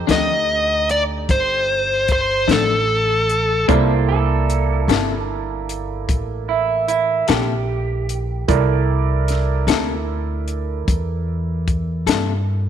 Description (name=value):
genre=slow blues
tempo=50 BPM (dotted quarters)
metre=12/8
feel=straight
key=C mixolydian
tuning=A4 = 441 Hz
part: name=clear upright piano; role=accompaniment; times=0.0-12.7 s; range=Bb3 to D6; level=-26 LUFS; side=right 12 dB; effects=none
part: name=upright bass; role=bass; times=0.0-12.7 s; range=G1 to G2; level=-21 LUFS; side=equal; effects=none
part: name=dark smooth lead guitar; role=melody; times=0.1-3.7 s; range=A4 to Eb5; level=-17 LUFS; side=left 1 dB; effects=overdrive
part: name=electric guitar through a small old amp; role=accompaniment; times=0.1-12.3 s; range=F2 to A4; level=-23 LUFS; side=left 12 dB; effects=tremolo
part: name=compact cocktail drum kit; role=drums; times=0.1-12.3 s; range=hi-hat, kick drum, snare drum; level=-22 LUFS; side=left 3 dB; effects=none
part: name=electric guitar through a small old amp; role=second line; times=3.7-9.6 s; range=E4 to C5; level=-22 LUFS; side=right 6 dB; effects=none
room=light reverb, studio ambience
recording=1960s-style stereo with parts hard left and right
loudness=-16 LUFS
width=side -9 dB against mid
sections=0.0-12.7 A section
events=none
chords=0.0 F13; 3.7 C13